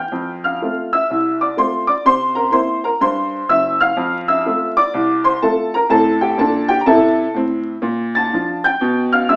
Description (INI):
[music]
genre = jazz, stride piano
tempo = 125 BPM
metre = 4/4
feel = swing 64% on 8ths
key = F major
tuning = A4 = 440 Hz
[part]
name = warm upright piano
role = solo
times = 0.0-9.4 s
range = Gb1 to A6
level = -14 LUFS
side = equal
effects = none
[sound]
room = wet studio reverb, RT60 0.6 s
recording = rough home demo mix, vinyl crackle, small speaker sound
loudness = -14 LUFS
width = side -29 dB against mid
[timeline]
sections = 0.1-9.4 A section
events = none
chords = 0.1 F; 2.0 C7; 4.0 F; 5.9 C13/A; 7.8 Bb; 8.8 Bdim7